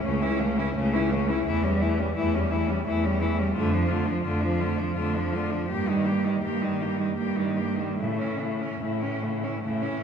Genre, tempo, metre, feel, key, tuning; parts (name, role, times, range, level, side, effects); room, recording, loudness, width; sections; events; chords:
classical, lyrical piece for cello ensemble; 72-87 BPM; 3/4; rubato; A4 = 440 Hz
rich cello; melody; 0.0-10.0 s; C#4 to G4; -31 LUFS; left 7 dB
rich cello; second line; 0.0-10.0 s; F3 to C#4; -29 LUFS; right 3 dB
rich cello; accompaniment; 0.0-10.0 s; C#3 to G3; -31 LUFS; left 2 dB
rich cello; bass; 0.0-10.0 s; C#2 to A2; -28 LUFS; right 2 dB
wet scoring stage reverb, RT60 1.6 s; heard from further back in the room; -24 LUFS; side -7 dB against mid
0.0-10.0 A section
0.0 A/C#; 1.5 A7/E; 3.6 Dm/F; 5.7 Eb/G; 8.0 A